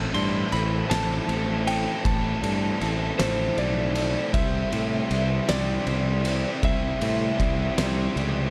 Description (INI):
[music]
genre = post-rock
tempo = 52 BPM (dotted quarters)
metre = 6/8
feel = straight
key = unclear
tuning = A4 = 440 Hz
[part]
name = electric slide guitar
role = melody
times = 0.0-8.5 s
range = C5 to C6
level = -33 LUFS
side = equal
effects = tape echo
[part]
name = pedal steel guitar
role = sustained chords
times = 0.0-8.5 s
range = G4 to G5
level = -50 LUFS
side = equal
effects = none
[part]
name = distorted electric guitar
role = riff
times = 0.0-8.5 s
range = A2 to C5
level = -35 LUFS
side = equal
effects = overdrive
[part]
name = sludgy distorted guitar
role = riff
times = 0.0-8.5 s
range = A2 to C5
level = -33 LUFS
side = equal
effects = overdrive
[part]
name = fuzz fingered electric bass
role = bass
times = 0.0-8.5 s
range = A1 to A2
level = -29 LUFS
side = equal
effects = overdrive
[part]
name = vibraphone with medium hard mallets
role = arpeggios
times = 0.1-8.5 s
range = C5 to E5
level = -41 LUFS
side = equal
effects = none
[part]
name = oversized low-tuned drum kit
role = drums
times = 0.1-8.3 s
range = kick drum, ride cymbal, snare drum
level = -31 LUFS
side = equal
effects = none
[sound]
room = small room ambience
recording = dark, warm production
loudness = -25 LUFS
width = mono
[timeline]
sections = 0.0-8.5 A section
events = none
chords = 0.0 Am; 4.3 C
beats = 0.91 | 2.06 3.20 | 4.34 5.49 | 6.64 7.79